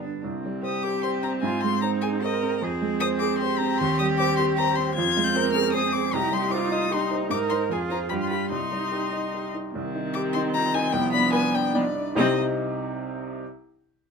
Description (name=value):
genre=quick classical-period movement for piano quartet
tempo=152 BPM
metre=3/4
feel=straight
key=C minor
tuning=A4 = 440 Hz
part: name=rich cello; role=second line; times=0.0-12.4 s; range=Eb3 to Bb4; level=-30 LUFS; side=right 3 dB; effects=none
part: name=rich viola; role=accompaniment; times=0.0-12.4 s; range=B3 to F4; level=-29 LUFS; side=right 2 dB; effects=none
part: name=warm baby grand piano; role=accompaniment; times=0.0-13.4 s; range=C2 to Eb5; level=-26 LUFS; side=right 2 dB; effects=none
part: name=rich violin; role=melody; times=0.6-12.4 s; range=D5 to Ab6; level=-27 LUFS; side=left 8 dB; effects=none
room=moderate studio reverb, RT60 0.7 s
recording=none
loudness=-22 LUFS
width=side -5 dB against mid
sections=0.2-9.7 A section; 9.7-12.2 B section; 12.2-13.4 C section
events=none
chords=0.2 C5; 1.4 Ab; 2.6 Fm; 3.8 Cm/Eb; 5.0 Fm; 6.1 Cm; 7.3 Ab; 7.7 Fm; 8.1 G7; 8.5 Cm; 10.9 G7b13; 12.2 Cm